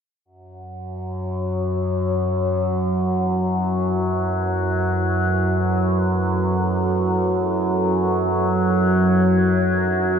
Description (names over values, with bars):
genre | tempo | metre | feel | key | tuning
dark ambient drone | free time | none | none | unclear | A4 = 440 Hz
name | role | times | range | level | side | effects
dark analog pad | sustained chords | 0.3-10.2 s | F#3 to B4 | -30 LUFS | left 1 dB | chorus
overtone-sweeping drone | drone | 0.6-10.2 s | F#2 to F#3 | -19 LUFS | equal | chorus, built-in reverb
room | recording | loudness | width
wet huge ambient reverb, RT60 8.1 s | dark, warm production | -18 LUFS | side -7 dB against mid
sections
0.3-10.2 A section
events
fade-in on analog synth pad 0.3-10.2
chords
0.3 F#m7; 9.7 N.C.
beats
free time